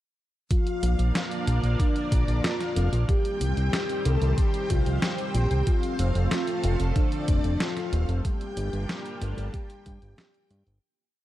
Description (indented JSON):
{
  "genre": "synthwave",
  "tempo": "93 BPM",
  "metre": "4/4",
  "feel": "straight",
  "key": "G minor",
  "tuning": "A4 = 445 Hz",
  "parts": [
    { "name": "soft octave-layered synth lead", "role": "melody", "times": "0.5-10.6 s", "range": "D4 to A4", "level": "-32 LUFS", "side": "equal", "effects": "chorus, phaser, tape echo" },
    { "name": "string machine, violins", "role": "second line", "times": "0.5-10.6 s", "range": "D5 to A5", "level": "-38 LUFS", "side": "equal", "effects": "ensemble chorus, cassette tape, tape echo" },
    { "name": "lush unison pad", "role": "sustained chords", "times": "0.8-10.8 s", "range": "Eb3 to D5", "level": "-34 LUFS", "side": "equal", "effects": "chorus, phaser, sidechain pumping" },
    { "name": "detuned 8-bit digital drum machine", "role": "drums", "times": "0.5-10.8 s", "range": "hi-hat, snare drum", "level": "-32 LUFS", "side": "equal", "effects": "none" },
    { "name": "electronic kick drum", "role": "drums", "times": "0.5-10.0 s", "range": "none", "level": "-25 LUFS", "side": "equal", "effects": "none" },
    { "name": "fat analog bass", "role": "bass", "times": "0.8-10.8 s", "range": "Eb1 to G2", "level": "-24 LUFS", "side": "equal", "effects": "sidechain pumping" }
  ],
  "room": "light reverb, digital ambience",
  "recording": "dark, warm production",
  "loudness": "-23 LUFS",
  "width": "side -14 dB against mid",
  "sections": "0.5-10.8 verse",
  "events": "fade-out 7.4-10.8",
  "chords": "0.5 Bb; 3.1 Cm; 5.7 F; 8.2 Gm7"
}